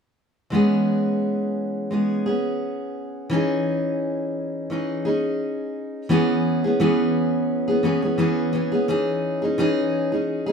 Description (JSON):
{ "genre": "pop", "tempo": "86 BPM", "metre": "4/4", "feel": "swing 55% on 16ths", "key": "E major", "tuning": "A4 = 440 Hz", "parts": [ { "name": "picked steel-string acoustic guitar", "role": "accompaniment", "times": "0.5-10.5 s", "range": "E3 to G#4", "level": "-20 LUFS", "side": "equal", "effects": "none" } ], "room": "moderate studio reverb, RT60 0.8 s", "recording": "minimal, uncompressed stereo recording", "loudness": "-20 LUFS", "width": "side -6 dB against mid", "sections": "0.5-6.1 A section; 6.1-10.5 B section", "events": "none", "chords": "0.5 E6; 3.3 C#sus2/E; 6.1 E6; 8.9 C#sus2/E" }